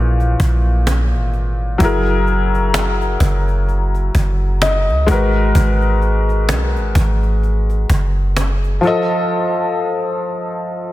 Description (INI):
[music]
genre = contemporary R&B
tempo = 64 BPM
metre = 4/4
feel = swing 58% on 16ths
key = G# minor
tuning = A4 = 444 Hz
[part]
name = felt-muted upright piano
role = accompaniment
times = 0.0-10.9 s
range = A#2 to D#5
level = -19 LUFS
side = left 2 dB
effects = none
[part]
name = clean 808-style bass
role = bass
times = 0.0-8.8 s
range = F#1 to C#2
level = -16 LUFS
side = equal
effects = none
[part]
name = cajon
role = drums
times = 0.2-9.0 s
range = none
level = -23 LUFS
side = right 1 dB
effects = none
[sound]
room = light reverb, small room ambience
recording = dense, heavily limited modern master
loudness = -14 LUFS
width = side -16 dB against mid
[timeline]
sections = 0.0-10.9 A section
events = felt piano fill 4.1-5.6; break 9.3-10.9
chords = 0.0 A#m7b5; 1.8 F#9; 5.1 G#m9; 8.8 F7